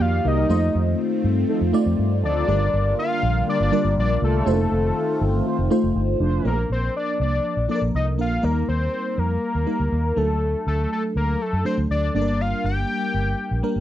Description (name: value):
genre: pop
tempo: 121 BPM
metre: 4/4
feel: straight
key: Bb major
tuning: A4 = 441 Hz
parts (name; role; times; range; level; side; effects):
- fat analog lead; melody; 0.0-13.8 s; A4 to G5; -25 LUFS; left 2 dB; chorus, slapback echo
- FM electric piano with soft pad layer; accompaniment; 0.0-13.8 s; F3 to G5; -25 LUFS; equal; chorus, phaser
- phased analog pad; sustained chords; 0.0-6.4 s; D3 to D5; -29 LUFS; left 2 dB; phaser, chorus
- vintage muted fingered electric bass; bass; 0.0-13.8 s; F1 to G2; -22 LUFS; equal; none
- mellow synth brass; stabs; 0.2-6.5 s; F3 to D5; -27 LUFS; right 2 dB; chorus
room: light reverb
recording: dry, close 1970s-style studio recording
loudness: -19 LUFS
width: side -12 dB against mid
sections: 0.0-6.4 A section; 6.4-13.8 B section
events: FM electric piano fill 13.4-13.8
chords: 0.5 F7; 2.5 Gm7; 4.5 F7; 6.4 Bb; 8.4 Eb; 10.2 D; 12.2 Gm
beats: 0.00 | 0.50 0.99 1.49 1.99 | 2.48 2.98 3.47 3.97 | 4.46 4.96 5.46 5.95 | 6.45 6.94 7.44 7.94 | 8.43 8.93 9.42 9.92 | 10.41 10.91 11.41 11.90 | 12.40 12.89 13.39